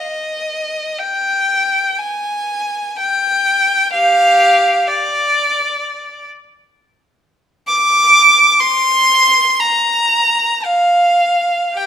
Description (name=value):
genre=classical, free, expressive piece for unaccompanied violin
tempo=free time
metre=none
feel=none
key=unclear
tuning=A4 = 440 Hz
part: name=rich violin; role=solo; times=0.0-11.9 s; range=G4 to D6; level=-12 LUFS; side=equal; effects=none
room=wet stone room reverb, RT60 1.2 s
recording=none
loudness=-11 LUFS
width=side -9 dB against mid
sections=0.0-11.9 A section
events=none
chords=none